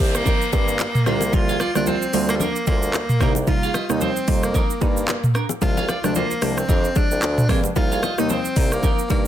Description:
afrobeats; 112 BPM; 4/4; swing 58% on 16ths; C minor; A4 = 442 Hz
breathy tenor saxophone; melody; 0.0-9.3 s; G3 to F4; -25 LUFS; equal; tape echo
glassy wavetable pluck; accompaniment; 0.0-9.3 s; C3 to G4; -25 LUFS; right 2 dB; chorus
clear bassoon; bass; 0.0-9.3 s; C2 to G2; -26 LUFS; equal
downlifter; sound effects; 0.0-3.5 s; -35 LUFS; equal
afro-pop drum kit; drums; 0.1-9.2 s; handclaps, hi-hat, kick drum, rim click, shaker, toms; -21 LUFS; equal; soft clipping on snare
clean electric guitar; riff; 0.3-9.0 s; C4 to F5; -29 LUFS; right 5 dB; tape echo
congas and bongos; percussion; 0.3-9.2 s; -30 LUFS; left 6 dB
light reverb; dense, heavily limited modern master; -18 LUFS; side -11 dB against mid
0.0-9.3 A section
0.0 Cm7; 1.1 Gm7/C; 3.2 Cm7; 5.6 Dm7b5/C; 7.8 Cm7

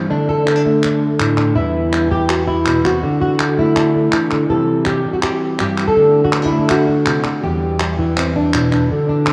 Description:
flamenco; 163 BPM; 4/4; straight; E minor; A4 = 441 Hz
flamenco guitar; melody; 0.0-9.3 s; E2 to A4; -16 LUFS; equal; lush chorus
palmas hand claps; percussion; 0.5-9.3 s; -25 LUFS; equal
wet plate reverb, RT60 2.5 s; dreamy mix soaked in reverb, cassette tape; -16 LUFS; mono
0.0-9.3 A section
0.1 D5; 1.6 Em; 3.0 D; 4.5 C; 6.0 D; 7.4 Em

